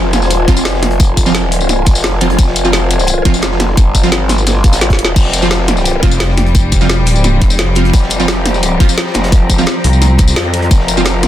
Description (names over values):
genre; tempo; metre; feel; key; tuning
dark technical drum and bass; 173 BPM; 4/4; straight; F minor; A4 = 440 Hz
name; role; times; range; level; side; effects
growl bass; bass; 0.0-11.3 s; F1 to F2; -15 LUFS; equal; chorus, overdrive, sidechain pumping
granular cloud pad; texture; 0.0-11.3 s; F4 to Bb5; -21 LUFS; left 1 dB; built-in reverb, sidechain pumping
crunchy breakbeat drum kit; drums; 0.1-11.3 s; hi-hat, snare drum; -27 LUFS; equal; none
drum and bass drum kit; drums; 0.1-11.3 s; crash cymbal, hi-hat, snare drum, tambourine; -16 LUFS; left 1 dB; none
orchestra-hit-like synth stab; stabs; 0.5-11.0 s; F3 to F4; -18 LUFS; right 2 dB; built-in reverb, digital delay
electronic kick drum; drums; 0.5-10.8 s; none; -10 LUFS; equal; none
swell; sound effects; 4.6-5.2 s; none; -24 LUFS; equal; none
clear studio string section; sustained chords; 5.2-11.3 s; F3 to Bb4; -19 LUFS; left 2 dB; sidechain pumping
pulsing pluck wobble bass; bass; 6.0-10.3 s; F1 to C2; -11 LUFS; equal; chorus
room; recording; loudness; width
little or no reverb; dense, heavily limited modern master; -9 LUFS; side -12 dB against mid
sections
0.0-11.3 A section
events
swell 4.6-5.2; drum fill 4.8-5.2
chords
0.0 Fmadd9